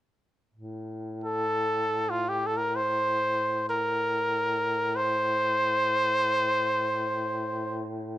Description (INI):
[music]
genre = caucasian folk, Caucasian lament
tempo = free time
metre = none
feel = none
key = A phrygian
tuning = A4 = 440 Hz
[part]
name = mellow duduk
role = drone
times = 0.5-8.2 s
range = A2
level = -35 LUFS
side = left 1 dB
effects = none
[part]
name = bright trumpet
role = melody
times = 1.2-7.8 s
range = F4 to C5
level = -25 LUFS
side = equal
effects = none
[sound]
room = light reverb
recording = close, detailed microphones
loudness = -25 LUFS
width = side -14 dB against mid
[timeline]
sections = 0.5-8.2 A section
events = none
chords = none